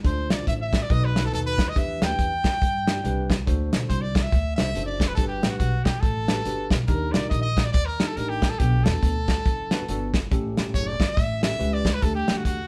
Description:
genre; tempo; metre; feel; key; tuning
uptempo gospel; 140 BPM; 4/4; swing 60% on 8ths; unclear; A4 = 440 Hz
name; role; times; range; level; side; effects
bell-like tine electric piano; accompaniment; 0.0-12.7 s; G2 to D5; -34 LUFS; equal; none
upright bass; bass; 0.0-12.7 s; F#1 to G2; -30 LUFS; equal; none
warm soul drum kit; drums; 0.0-12.6 s; hi-hat, kick drum, snare drum; -26 LUFS; equal; none
brilliant trumpet; melody; 0.1-12.7 s; F#4 to G5; -31 LUFS; equal; none
room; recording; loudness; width
moderate studio reverb, RT60 0.8 s; band playing live in one room; -24 LUFS; mono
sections
0.0-12.7 A section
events
none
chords
0.0 Dm7; 0.9 B7; 1.8 Em7; 3.5 D7; 5.2 Gmaj7; 6.9 Ebmaj7; 8.6 Bm7; 10.3 A7; 12.0 Dsus4

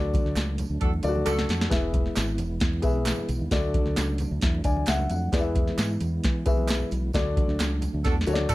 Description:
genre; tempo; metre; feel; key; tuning
uptempo 1960s-style soul; 133 BPM; 4/4; straight; unclear; A4 = 441 Hz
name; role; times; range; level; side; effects
warm upright piano; accompaniment; 0.0-8.5 s; D3 to G#5; -29 LUFS; left 3 dB; none
mellow tonewheel organ; sustained chords; 0.0-8.5 s; E3 to E4; -34 LUFS; right 2 dB; chorus vibrato, stopped rotary speaker
fingered electric bass; bass; 0.0-8.5 s; E1 to E3; -28 LUFS; equal; none
congas; percussion; 0.0-8.5 s; none; -40 LUFS; right 2 dB; none
soft vintage rhythm box; drums; 0.1-8.5 s; hi-hat, kick drum, snare drum, toms; -26 LUFS; equal; overdrive
tambourine and handclaps; percussion; 0.1-8.5 s; none; -39 LUFS; right 5 dB; none
warm horn section; second line; 0.8-1.7, 8.0-8.5 s; D4 to A4; -29 LUFS; right 1 dB; none
room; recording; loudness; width
small room ambience; dark, warm production; -23 LUFS; side -18 dB against mid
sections
0.0-8.5 A section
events
band accent 0.0-1.7, 7.1-8.5; drum fill 0.8-1.7, 8.0-8.5; upright piano fill 4.4-5.3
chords
0.0 D; 1.7 E; 3.5 D; 5.3 E; 7.1 D

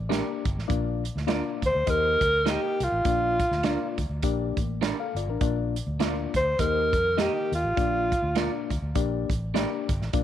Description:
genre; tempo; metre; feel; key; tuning
uptempo 1960s-style soul; 102 BPM; 4/4; swing 58% on 8ths; Bb major; A4 = 440 Hz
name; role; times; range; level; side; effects
vintage muted fingered electric bass; bass; 0.0-10.2 s; G1 to F2; -30 LUFS; equal; none
reed electric piano; accompaniment; 0.1-10.2 s; Bb2 to F5; -31 LUFS; left 11 dB; overdrive
electric guitar through a small old amp; stabs; 0.1-9.7 s; D4 to Eb5; -34 LUFS; right 9 dB; none
natural country drum kit; drums; 0.1-10.2 s; hi-hat, kick drum, snare drum; -30 LUFS; right 2 dB; none
breathy alto saxophone; melody; 1.7-8.7 s; F4 to C5; -24 LUFS; right 1 dB; none
room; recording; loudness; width
moderate spring reverb, RT60 1.9 s; 1960s-style stereo with parts hard left and right; -23 LUFS; side -10 dB against mid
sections
0.0-10.2 A section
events
none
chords
0.0 Gm; 0.7 Bb; 1.9 Eb; 3.1 Bb; 4.2 Gm; 5.4 Bb; 6.6 Eb; 7.8 Bb; 9.0 Gm

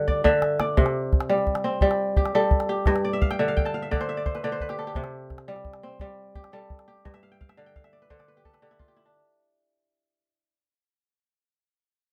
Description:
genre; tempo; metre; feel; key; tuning
west african traditional, West African string and xylophone music; 115 BPM (dotted quarters); 12/8; straight; unclear; A4 = 443 Hz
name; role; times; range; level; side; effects
kora; arpeggios; 0.0-10.7 s; G2 to A5; -26 LUFS; equal; none
calabash; percussion; 0.1-8.9 s; none; -26 LUFS; equal; none
room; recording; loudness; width
little or no reverb; close, detailed microphones; -24 LUFS; mono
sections
0.0-9.1 A section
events
fade-out 0.0-9.1; drum fill 0.0-0.8; kora fill 3.0-5.0, 7.1-9.1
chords
0.0 G5; 0.8 C5; 2.9 G5; 5.0 C5; 7.1 G5

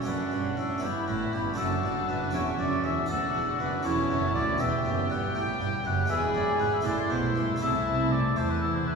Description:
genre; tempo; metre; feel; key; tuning
classical, baroque-style concerto movement with solo episodes; 80 BPM (dotted quarters); 6/8; straight; D major; A4 = 440 Hz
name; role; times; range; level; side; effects
dark studio violin section; melody; 0.0-9.0 s; E5 to C6; -40 LUFS; left 2 dB; none
warm chamber violin section; second line; 0.0-9.0 s; D4 to G#4; -32 LUFS; equal; none
harpsichord; accompaniment; 0.0-9.0 s; D2 to B4; -36 LUFS; right 1 dB; none
warm chamber viola section; accompaniment; 0.0-9.0 s; G3 to D4; -35 LUFS; right 2 dB; none
warm oboe; melody; 0.1-9.0 s; F#4 to G5; -30 LUFS; left 3 dB; none
rich chamber cello section; bass; 0.1-9.0 s; D2 to E3; -33 LUFS; right 3 dB; none
rich chamber double bass section; bass; 0.1-9.0 s; E1 to E2; -34 LUFS; right 2 dB; none
room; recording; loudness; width
wet cathedral reverb, RT60 5.7 s; recorded in a church or concert hall, small room ambience; -25 LUFS; side -5 dB against mid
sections
0.0-9.0 A section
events
none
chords
0.1 D/F#; 0.8 Em/G; 1.6 D/F#; 2.3 C#dim/E; 3.1 D; 3.8 A/E; 4.6 Em; 6.1 E7; 6.9 Am; 7.6 Am/C

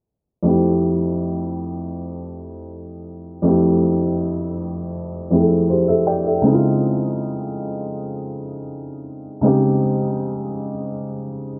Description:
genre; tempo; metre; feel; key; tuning
R&B; 80 BPM; 4/4; straight; unclear; A4 = 437 Hz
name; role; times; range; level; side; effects
felt-muted upright piano; accompaniment; 0.4-11.6 s; F2 to G5; -21 LUFS; equal; none
room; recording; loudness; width
moderate lush hall reverb, RT60 3.2 s; low-pass filter; -20 LUFS; mono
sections
0.4-11.6 A section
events
filter sweep 0.4-11.6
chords
0.4 Fmaj9; 6.4 Dbmaj9

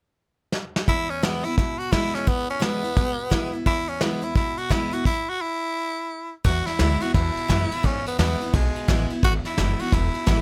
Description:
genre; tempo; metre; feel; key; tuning
rockabilly; 172 BPM; 4/4; swing 63% on 8ths; E major; A4 = 441 Hz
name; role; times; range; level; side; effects
soft brush drum kit; drums; 0.5-10.4 s; crash cymbal, hi-hat, kick drum, ride cymbal, snare drum; -26 LUFS; equal; none
raspy tenor saxophone; melody; 0.9-10.4 s; G#3 to F#4; -29 LUFS; equal; none
picked steel-string acoustic guitar; accompaniment; 0.9-10.4 s; E2 to E4; -32 LUFS; equal; none
upright bass; bass; 6.4-10.4 s; E1 to G#2; -26 LUFS; equal; none
room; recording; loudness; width
little or no reverb; none; -24 LUFS; mono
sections
0.9-6.4 A section; 6.4-10.4 B section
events
drum fill 0.5-0.9; stop 5.1-6.4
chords
0.0 N.C.; 0.9 E

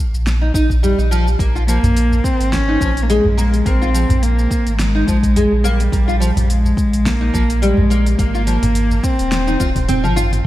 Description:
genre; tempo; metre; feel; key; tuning
organic downtempo; 106 BPM; 4/4; swing 55% on 16ths; Bb dorian; A4 = 440 Hz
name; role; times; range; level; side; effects
warm sub bass; bass; 0.1-10.4 s; Eb1 to Bb1; -17 LUFS; equal; sidechain pumping
deep house drum kit; drums; 0.1-10.4 s; hi-hat, shaker, snare drum, toms; -25 LUFS; equal; none
nylon-string guitar; arpeggios; 0.4-10.5 s; F3 to F4; -20 LUFS; equal; analog chorus, low-pass filter, diffuse ambient delay
electronic kick drum; drums; 0.5-9.9 s; none; -19 LUFS; equal; none
udu; percussion; 0.8-10.0 s; none; -21 LUFS; left 1 dB; none
warm cello; melody; 1.7-9.9 s; G3 to Db4; -19 LUFS; equal; diffuse ambient delay
room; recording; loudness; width
moderate plate reverb, RT60 2.0 s; dreamy mix soaked in reverb; -13 LUFS; side -15 dB against mid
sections
0.0-10.4 A section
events
drum fill 9.3-10.4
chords
0.0 Bbsus4; 1.4 Bb5; 5.9 Fmadd9/Bb (rootless); 8.2 Ab

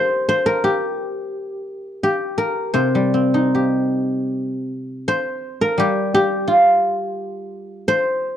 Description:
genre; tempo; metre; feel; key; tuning
chinese traditional, Chinese solo plucked strings; 73-87 BPM; 4/4; rubato; C yu mode; A4 = 438 Hz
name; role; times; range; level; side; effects
guzheng; solo; 0.0-8.4 s; C3 to C5; -17 LUFS; equal; none
room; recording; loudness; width
studio reverb; dry, close 1970s-style studio recording; -17 LUFS; side -10 dB against mid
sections
0.0-4.3 A section; 4.3-8.4 B section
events
none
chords
none

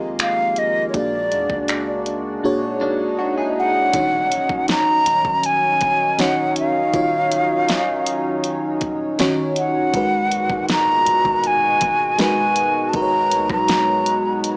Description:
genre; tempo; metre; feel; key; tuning
contemporary R&B; 80 BPM; 4/4; straight; Eb minor from 3.9 s; A4 = 439 Hz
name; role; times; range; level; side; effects
FM electric piano with soft pad layer; accompaniment; 0.0-14.6 s; Bb2 to Eb5; -26 LUFS; equal; chorus
chorused pulse-width pad; sustained chords; 0.0-14.6 s; Bb2 to F#4; -28 LUFS; equal; none
soft 808-style bass; bass; 0.0-14.6 s; Eb1 to Fb2; -40 LUFS; equal; none
breathy mellow silver concert flute; melody; 0.2-14.6 s; Db5 to Bb5; -21 LUFS; equal; none
smooth R&B drum kit; drums; 0.2-14.6 s; finger snaps, hi-hat, kick drum, rim click, snare drum; -26 LUFS; equal; none
swell and impact; sound effects; 2.6-6.9 s; none; -35 LUFS; equal; none
direct-recorded clean electric guitar; arpeggios; 2.8-3.9 s; Bb3 to Ab4; -29 LUFS; equal; lush chorus, analog delay
room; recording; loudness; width
light reverb; dry, gritty hardware recording, small speaker sound; -19 LUFS; mono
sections
0.0-3.9 A section; 3.9-14.6 B section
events
drums muted 2.4-3.9; swell 2.6-3.9; impact 3.9-6.9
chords
0.0 Fm7; 0.9 Bb7alt; 3.9 Ebm9; 9.9 Abm9

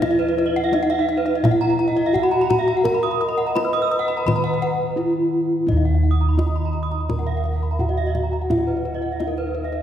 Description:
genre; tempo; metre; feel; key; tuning
Balinese gamelan; 85 BPM; 4/4; straight; Eb pelog; A4 = 443 Hz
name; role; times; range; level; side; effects
gamelan-type bronze metallophone; melody; 0.0-9.8 s; Eb4 to Eb5; -22 LUFS; equal; none
gamelan-type bronze metallophone; arpeggios; 0.0-9.8 s; Bb4 to Fb6+35c; -27 LUFS; left 3 dB; none
gamelan-type bossed gongs; bass; 0.0-9.8 s; Eb2 to Bb4; -23 LUFS; equal; none
kendang; percussion; 0.0-9.8 s; none; -28 LUFS; left 1 dB; none
gamelan-type bronze metallophone; arpeggios; 0.2-9.7 s; Bb4 to Fb6+35c; -28 LUFS; right 6 dB; none
mellow bansuri; second line; 1.9-9.8 s; Eb5 to Bb5; -28 LUFS; equal; none
room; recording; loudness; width
wet church reverb, RT60 3.0 s; recorded in a church or concert hall; -18 LUFS; side -10 dB against mid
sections
0.0-9.8 A section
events
drum fill 4.8-5.7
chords
none

